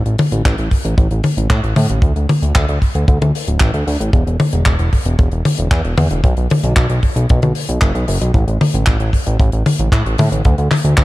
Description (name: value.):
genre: italo disco.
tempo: 114 BPM.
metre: 4/4.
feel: straight.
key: unclear.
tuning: A4 = 439 Hz.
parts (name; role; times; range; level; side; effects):
fat analog bass; bass; 0.0-11.0 s; D1 to A2; -16 LUFS; equal; ping-pong delay.
tight funk drum kit; drums; 0.1-11.0 s; handclaps, hi-hat, toms; -18 LUFS; left 1 dB; small room ambience.
kick drum; drums; 0.5-11.0 s; none; -14 LUFS; equal; small room ambience.
room: little or no reverb.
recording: dark, warm production.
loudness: -13 LUFS.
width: side -18 dB against mid.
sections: 0.0-11.0 A section.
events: none.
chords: none.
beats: 0.45 0.98 1.50 | 2.03 2.56 3.08 3.61 | 4.13 4.66 5.19 5.71 | 6.24 6.77 7.29 7.82 | 8.35 8.87 9.40 9.92 | 10.45 10.98.